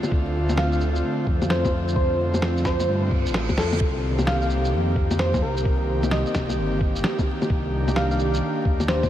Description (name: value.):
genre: future garage.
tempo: 130 BPM.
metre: 4/4.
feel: swing 64% on 16ths.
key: C dorian.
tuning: A4 = 438 Hz.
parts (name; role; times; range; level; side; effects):
airy breathy pad; sustained chords; 0.0-9.1 s; D3 to G4; -26 LUFS; equal; chorus, sidechain pumping.
electronic bongos, shaker and snare drum; drums; 0.0-9.1 s; none; -28 LUFS; left 1 dB; studio reverb.
dark detuned saw bass; bass; 0.1-9.1 s; G1 to G2; -25 LUFS; equal; sidechain pumping.
electronic kick drum; drums; 0.1-9.1 s; none; -24 LUFS; equal; studio reverb.
soft struck synth lead; melody; 0.6-9.1 s; A4 to F5; -28 LUFS; equal; chorus, ping-pong delay.
reverse cymbal; sound effects; 3.0-3.8 s; none; -39 LUFS; right 4 dB; none.
room: moderate huge ambient reverb, RT60 8.9 s.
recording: dreamy mix soaked in reverb, vinyl crackle.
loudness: -20 LUFS.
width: side -12 dB against mid.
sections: 0.0-9.1 A section.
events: reverse cymbal 3.0-3.8; drum fill 3.6.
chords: 0.0 Dm7; 3.8 Cm7.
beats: | 0.12 0.58 1.04 1.50 | 1.96 2.42 2.88 3.35 | 3.81 4.27 4.73 5.19 | 5.65 6.12 6.58 7.04 | 7.50 7.96 8.42 8.88.